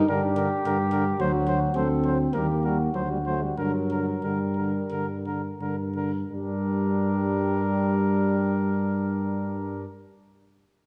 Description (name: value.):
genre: classical, brass quintet.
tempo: 83-109 BPM.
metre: 4/4.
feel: rubato.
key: G minor.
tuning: A4 = 440 Hz.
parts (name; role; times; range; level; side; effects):
mellow flugelhorn; second line; 0.0-9.9 s; D4 to Bb4; -35 LUFS; equal; none.
warm French horn; accompaniment; 0.0-9.9 s; F#3 to D4; -32 LUFS; equal; none.
warm trumpet; melody; 0.1-9.9 s; Bb4 to C5; -36 LUFS; equal; none.
warm euphonium; accompaniment; 0.1-9.9 s; D3 to G3; -34 LUFS; equal; none.
mellow tuba; bass; 0.1-9.9 s; D2 to G2; -29 LUFS; equal; none.
room: wet recital hall reverb, RT60 1.6 s.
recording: dark, warm production.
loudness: -26 LUFS.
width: mono.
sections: 0.0-6.3 A section; 6.3-9.1 B section.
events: slowing down 0.1-6.3.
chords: 0.0 Gm; 1.2 D7; 2.3 Eb; 2.9 D7; 3.6 Gm.